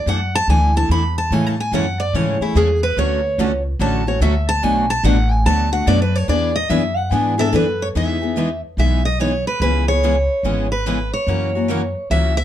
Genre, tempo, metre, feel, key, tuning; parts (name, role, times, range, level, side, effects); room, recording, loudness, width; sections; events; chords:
acoustic string swing (jazz manouche); 145 BPM; 4/4; swing 64% on 8ths; E major from 7.9 s; A4 = 439 Hz
picked steel-string acoustic guitar; melody; 0.0-12.4 s; E4 to B5; -20 LUFS; right 1 dB
upright bass; bass; 0.0-12.4 s; G#1 to A2; -19 LUFS; equal
picked steel-string acoustic guitar; accompaniment; 0.1-12.3 s; B2 to A4; -22 LUFS; left 4 dB
picked steel-string acoustic guitar; accompaniment; 1.3-12.3 s; B2 to B4; -25 LUFS; right 7 dB
light reverb; dark, warm production; -16 LUFS; side -11 dB against mid
0.0-7.9 A section; 7.9-12.4 B section
steel-string acoustic guitar solo 0.0-7.9
0.0 E9sus4; 1.3 Amaj7; 3.0 Dmaj7; 4.6 Bm7; 6.3 E9; 7.9 Emaj7; 9.6 C#m7; 11.3 F#7